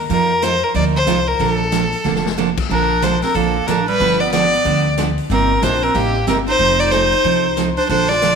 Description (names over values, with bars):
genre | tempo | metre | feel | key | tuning
country, western swing | 185 BPM | 4/4 | swing 62% on 8ths | Bb major | A4 = 442 Hz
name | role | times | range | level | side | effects
upright bass | bass | 0.0-8.4 s | F1 to F2 | -23 LUFS | left 2 dB | none
clear fiddle | melody | 0.1-8.4 s | G4 to D5 | -17 LUFS | left 2 dB | none
picked steel-string acoustic guitar | accompaniment | 0.1-8.3 s | C3 to Bb4 | -20 LUFS | right 10 dB | none
swinging big-band drum kit | drums | 0.1-8.3 s | crash cymbal, hi-hat, kick drum, snare drum | -27 LUFS | left 9 dB | none
clear clarinet | second line | 2.7-8.4 s | G3 to F4 | -22 LUFS | right 7 dB | none
room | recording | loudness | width
moderate echo chamber reverb, RT60 2.0 s, small room ambience | 1960s-style stereo with parts hard left and right | -14 LUFS | side -6 dB against mid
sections
0.0-8.4 A section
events
drum fill 2.0-2.4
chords
0.1 F7sus4; 1.4 Bbmaj7; 4.0 G7; 5.3 Cm7/G; 6.6 F7